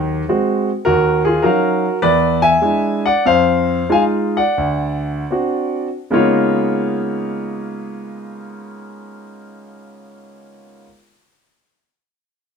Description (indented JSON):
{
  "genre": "solo jazz",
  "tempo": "73-105 BPM",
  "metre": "4/4",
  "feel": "swing 68% on 8ths",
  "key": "Db mixolydian",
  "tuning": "A4 = 440 Hz",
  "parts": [
    { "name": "clear concert grand piano", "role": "solo", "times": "0.0-10.9 s", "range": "D2 to G#5", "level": "-15 LUFS", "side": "equal", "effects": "none" }
  ],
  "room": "wet studio reverb, RT60 0.8 s",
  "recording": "minimal, uncompressed stereo recording",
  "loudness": "-14 LUFS",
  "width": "side -6 dB against mid",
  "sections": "0.9-6.1 A section; 6.1-9.4 B section",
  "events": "slowing down 0.9-6.1",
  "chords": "0.0 Ab7; 0.9 Ebm9; 2.0 E7; 3.2 Fm7; 4.6 D7; 6.1 Db13"
}